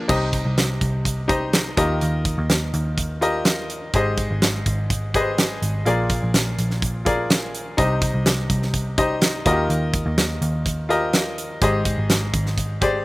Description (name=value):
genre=piano-driven pop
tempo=125 BPM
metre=4/4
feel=straight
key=C minor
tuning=A4 = 438 Hz
part: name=bright upright piano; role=accompaniment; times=0.0-13.0 s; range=Ab2 to Eb5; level=-23 LUFS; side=left 1 dB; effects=none
part: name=vintage muted picked electric bass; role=bass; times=0.1-13.0 s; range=Ab1 to Eb2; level=-24 LUFS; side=equal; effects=none
part: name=huge arena drum kit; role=drums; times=0.1-12.9 s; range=crash cymbal, hi-hat, kick drum, snare drum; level=-22 LUFS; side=right 1 dB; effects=none
room=little or no reverb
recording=recorded outdoors, with no room sound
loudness=-19 LUFS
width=side -19 dB against mid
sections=0.1-13.0 A section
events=none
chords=0.1 Cm; 1.8 Ebadd9; 3.9 Abmaj7; 5.9 Bb7; 7.8 Cm; 9.5 Ebadd9; 11.6 Abmaj7